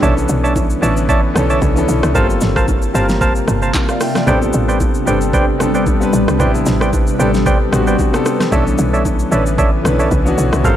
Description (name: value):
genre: amapiano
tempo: 113 BPM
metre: 4/4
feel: swing 55% on 16ths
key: unclear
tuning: A4 = 440 Hz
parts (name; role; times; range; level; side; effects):
- warm concert grand piano; accompaniment; 0.0-10.8 s; E3 to G5; -18 LUFS; left 2 dB; none
- ethereal airy pad; sustained chords; 0.0-10.8 s; C3 to A5; -21 LUFS; equal; ensemble chorus, built-in reverb, sidechain pumping
- percussive organ stab; stabs; 0.0-10.8 s; A4 to A5; -20 LUFS; right 3 dB; chorus, analog delay
- woody log drum bass; bass; 0.0-10.8 s; G1 to C2; -18 LUFS; equal; none
- smooth R&B drum kit; drums; 0.0-10.8 s; handclaps, hi-hat, kick drum, rim click, shaker, snare drum; -18 LUFS; equal; overdrive
- congas and bongos; percussion; 0.0-10.8 s; none; -27 LUFS; right 2 dB; none
room: digital ambience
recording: dry, gritty hardware recording, transformer saturation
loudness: -12 LUFS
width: side -11 dB against mid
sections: 0.0-10.8 A section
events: none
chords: 0.0 Bm11; 2.2 Gm11; 4.3 Am11; 8.5 Bm11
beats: | 0.03 0.56 1.09 1.62 | 2.15 2.68 3.21 3.74 | 4.28 4.81 5.34 5.87 | 6.40 6.93 7.46 7.99 | 8.52 9.05 9.59 10.12 | 10.65